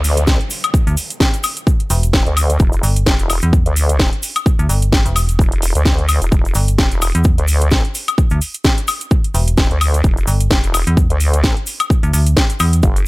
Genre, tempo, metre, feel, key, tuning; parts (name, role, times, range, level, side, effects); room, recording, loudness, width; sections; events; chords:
bass house; 129 BPM; 4/4; swing 56% on 16ths; E minor; A4 = 444 Hz
vowel-sweep wobble bass; bass; 0.0-13.1 s; E1 to D2; -16 LUFS; equal; chorus, sidechain pumping
house drum kit; drums; 0.0-13.0 s; hi-hat, snare drum, woodblock; -19 LUFS; left 1 dB
cabasa; percussion; 0.0-13.0 s; -27 LUFS; left 1 dB
downlifter; sound effects; 0.0-2.6 s; -35 LUFS; equal
electronic kick drum; drums; 0.3-12.9 s; -14 LUFS; equal
metallic FM bass; bass; 0.9-12.8 s; E1 to E2; -14 LUFS; equal; overdrive, sidechain pumping
little or no reverb; -12 LUFS; side -22 dB against mid
0.0-13.1 A section